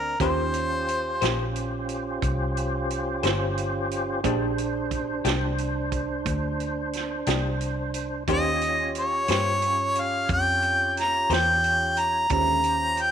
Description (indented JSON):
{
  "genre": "slow blues",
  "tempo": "60 BPM (dotted quarters)",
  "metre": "12/8",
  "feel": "straight",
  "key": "unclear",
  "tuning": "A4 = 440 Hz",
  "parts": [
    { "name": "clear harmonica", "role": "melody", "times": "0.0-1.5, 8.3-13.1 s", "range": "Bb4 to Bb5", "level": "-23 LUFS", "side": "equal", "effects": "none" },
    { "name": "dark grand piano", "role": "accompaniment", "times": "0.0-13.1 s", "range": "Db4 to C6", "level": "-34 LUFS", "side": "right 14 dB", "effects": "none" },
    { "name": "tonewheel organ", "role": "sustained chords", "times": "0.0-13.1 s", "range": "D3 to Db5", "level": "-30 LUFS", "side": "right 1 dB", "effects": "slow rotary speaker, overdrive, chorus vibrato" },
    { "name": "vintage muted fingered electric bass", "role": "bass", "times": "0.0-13.1 s", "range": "G1 to G2", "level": "-30 LUFS", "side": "left 1 dB", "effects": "none" },
    { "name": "electric guitar through a small old amp", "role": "accompaniment", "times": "0.2-11.5 s", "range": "Bb2 to C5", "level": "-30 LUFS", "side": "left 14 dB", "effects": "tremolo" },
    { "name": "vintage drum kit", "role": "drums", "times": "0.2-13.1 s", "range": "hi-hat, kick drum, snare drum", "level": "-31 LUFS", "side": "right 5 dB", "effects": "none" }
  ],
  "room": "light reverb",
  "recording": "1960s-style stereo with parts hard left and right",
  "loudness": "-22 LUFS",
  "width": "side -8 dB against mid",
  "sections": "0.0-13.1 A section",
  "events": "none",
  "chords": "0.2 Eb13; 4.2 Bb13; 8.3 Eb13"
}